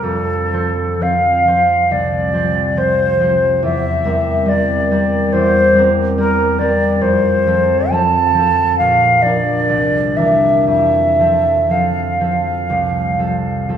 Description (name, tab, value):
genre	classical, romantic duo for flute and harp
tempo	57-73 BPM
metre	4/4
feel	rubato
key	F major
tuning	A4 = 443 Hz
part	silver concert flute	melody	0.0-13.7 s	A4 to A5	-14 LUFS	equal	none
part	concert harp	accompaniment	0.0-13.8 s	Bb1 to C5	-17 LUFS	equal	none
room	wet recital hall reverb, RT60 1.5 s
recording	heard from further back in the room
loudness	-12 LUFS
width	side -9 dB against mid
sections	0.0-13.8 A section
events	none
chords	0.0 F; 3.6 C7/E; 7.0 F; 8.8 Bb; 9.7 C9; 10.7 F